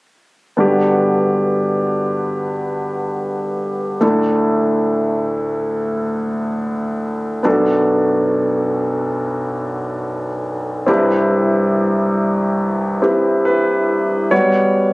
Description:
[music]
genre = pop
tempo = 70 BPM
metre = 4/4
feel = straight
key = unclear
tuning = A4 = 445 Hz
[part]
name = warm concert grand piano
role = accompaniment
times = 0.6-14.9 s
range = B1 to C#5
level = -15 LUFS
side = equal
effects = none
[sound]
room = moderate booth ambience, RT60 0.2 s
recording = recorded on a phone in the room, studio reverb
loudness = -15 LUFS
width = side -23 dB against mid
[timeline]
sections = 0.6-14.3 A section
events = none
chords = 0.6 Gmaj7; 4.0 Dsus2; 7.5 Bm7; 10.9 Cmaj7; 14.3 Gmaj7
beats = | 0.60 1.45 2.31 3.17 | 4.03 4.88 5.74 6.60 | 7.45 8.31 9.17 10.03 | 10.88 11.74 12.60 13.45 | 14.31

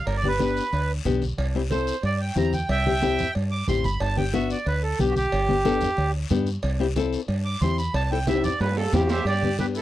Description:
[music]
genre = latin, cumbia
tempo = 183 BPM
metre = 4/4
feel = straight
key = G major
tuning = A4 = 440 Hz
[part]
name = accordion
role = melody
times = 0.0-9.8 s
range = F#4 to D6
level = -26 LUFS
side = right 3 dB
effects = none
[part]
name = deep dub fingered electric bass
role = bass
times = 0.1-9.8 s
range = G1 to G2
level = -26 LUFS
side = equal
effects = none
[part]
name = congas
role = percussion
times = 0.1-9.8 s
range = none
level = -30 LUFS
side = right 2 dB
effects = none
[part]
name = cowbell and timbales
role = percussion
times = 0.1-9.4 s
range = none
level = -33 LUFS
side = right 4 dB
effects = none
[part]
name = guiro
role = percussion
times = 0.1-9.8 s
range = none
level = -40 LUFS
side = left 7 dB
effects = none
[part]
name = nylon-string guitar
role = accompaniment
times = 0.2-9.8 s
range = B3 to A4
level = -25 LUFS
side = left 6 dB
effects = none
[part]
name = growling trumpet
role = second line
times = 9.1-9.8 s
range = E4 to C5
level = -32 LUFS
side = right 5 dB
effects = none
[sound]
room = light reverb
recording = dry, close 1970s-style studio recording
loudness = -21 LUFS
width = side -14 dB against mid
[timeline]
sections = 0.0-9.3 A section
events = accordion solo 0.0-9.3; drum fill 8.3-9.3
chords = 0.0 G; 1.4 C; 4.0 G; 6.6 C; 9.3 G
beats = | 0.07 0.40 0.72 1.05 | 1.38 1.71 2.04 2.37 | 2.69 3.02 3.35 3.68 | 4.01 4.34 4.66 4.99 | 5.32 5.65 5.98 6.30 | 6.63 6.96 7.29 7.62 | 7.95 8.27 8.60 8.93 | 9.26 9.59

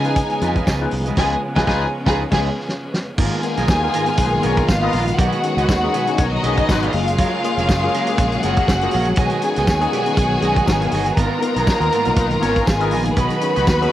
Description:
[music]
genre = disco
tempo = 120 BPM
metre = 4/4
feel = swing 56% on 16ths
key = G# dorian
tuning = A4 = 440 Hz
[part]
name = warm studio string section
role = second line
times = 0.0-13.9 s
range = D#4 to B5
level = -21 LUFS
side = equal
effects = cassette tape
[part]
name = electric guitar at the edge of break-up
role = accompaniment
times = 0.0-13.9 s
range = B3 to F#5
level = -29 LUFS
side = right 8 dB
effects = cassette tape
[part]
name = overdriven tine electric piano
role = accompaniment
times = 0.0-13.9 s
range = G#2 to B4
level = -26 LUFS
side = left 7 dB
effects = phaser, cassette tape
[part]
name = clear symphonic string section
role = sustained chords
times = 0.0-13.9 s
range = C#3 to G#4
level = -24 LUFS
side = equal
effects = cassette tape
[part]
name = fingered electric bass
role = bass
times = 0.0-13.9 s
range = E#1 to C#3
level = -23 LUFS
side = equal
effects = none
[part]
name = warm soul drum kit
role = drums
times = 0.0-13.9 s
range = crash cymbal, hi-hat, kick drum, snare drum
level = -21 LUFS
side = equal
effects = none
[part]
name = tambourine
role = percussion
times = 0.7-13.8 s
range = none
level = -39 LUFS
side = left 7 dB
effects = none
[part]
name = warm horn section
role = stabs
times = 3.6-6.9, 11.6-13.9 s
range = E#3 to D#5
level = -28 LUFS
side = left 7 dB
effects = cassette tape
[sound]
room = light reverb, small room reverb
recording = home recording on cassette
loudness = -16 LUFS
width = side -13 dB against mid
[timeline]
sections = 0.0-3.2 A section; 3.2-13.9 B section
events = band accent 1.2-3.2; drum fill 2.7-3.2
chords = 0.0 C#9; 3.2 G#m69; 5.2 B6; 6.9 F#maj9; 9.2 B6; 11.2 G#m69; 13.2 B6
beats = 0.17 0.67 | 1.17 1.67 2.18 2.68 | 3.18 3.68 4.18 4.68 | 5.18 5.68 6.18 6.68 | 7.18 7.68 8.18 8.68 | 9.18 9.68 10.18 10.68 | 11.17 11.67 12.17 12.67 | 13.17 13.67

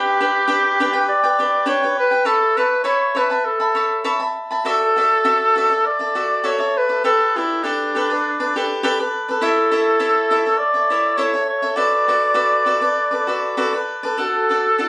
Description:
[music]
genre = mexican folk, mariachi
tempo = 101 BPM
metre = 4/4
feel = swing 54% on 8ths, rubato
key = D major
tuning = A4 = 443 Hz
[part]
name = warm oboe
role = melody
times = 0.0-14.9 s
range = D4 to D5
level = -16 LUFS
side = equal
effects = none
[part]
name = cavaquinho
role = accompaniment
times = 0.0-14.9 s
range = D4 to B5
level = -21 LUFS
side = equal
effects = none
[part]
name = dark trumpet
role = second line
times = 14.2-14.9 s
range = E4 to F#4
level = -27 LUFS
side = equal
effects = none
[sound]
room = moderate small room reverb, RT60 0.5 s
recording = recorded on a phone in the room, studio reverb, compression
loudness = -15 LUFS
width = side -24 dB against mid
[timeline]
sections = 0.0-14.2 A section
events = none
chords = 0.0 G; 2.3 Aadd9; 4.7 Dadd9; 7.0 Gadd9; 9.4 A; 11.8 D6; 14.2 D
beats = 0.50 1.08 1.67 | 2.25 2.84 3.44 4.05 | 4.65 5.26 5.86 6.45 | 7.04 7.64 8.24 8.83 | 9.42 10.00 10.58 11.17 | 11.76 12.35 12.96 13.58 | 14.19 14.80

